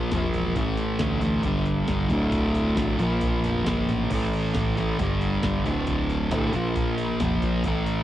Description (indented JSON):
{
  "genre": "quiet-loud alternative rock",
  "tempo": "136 BPM",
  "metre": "4/4",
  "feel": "straight",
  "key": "unclear",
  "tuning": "A4 = 440 Hz",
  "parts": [
    { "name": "thick fuzz guitar", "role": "riff", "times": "0.0-8.0 s", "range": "D2 to Bb3", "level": "-24 LUFS", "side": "equal", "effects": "distortion, cassette tape" },
    { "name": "growling fingered electric bass", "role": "bass", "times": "0.1-7.8 s", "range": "D1 to D2", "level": "-29 LUFS", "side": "equal", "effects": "overdrive" },
    { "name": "booming analog drum machine", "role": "drums", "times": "0.1-8.0 s", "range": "crash cymbal, hi-hat, kick drum, snare drum", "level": "-30 LUFS", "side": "equal", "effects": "cassette tape" }
  ],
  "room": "light reverb",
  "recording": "home recording on cassette",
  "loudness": "-22 LUFS",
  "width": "side -13 dB against mid",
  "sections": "0.0-8.0 A section",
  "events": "none",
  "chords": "0.0 Bb5; 0.6 A5; 1.4 G5; 2.1 D5; 3.0 Bb5; 4.1 A5; 5.0 G5; 5.7 D5; 6.5 Bb5"
}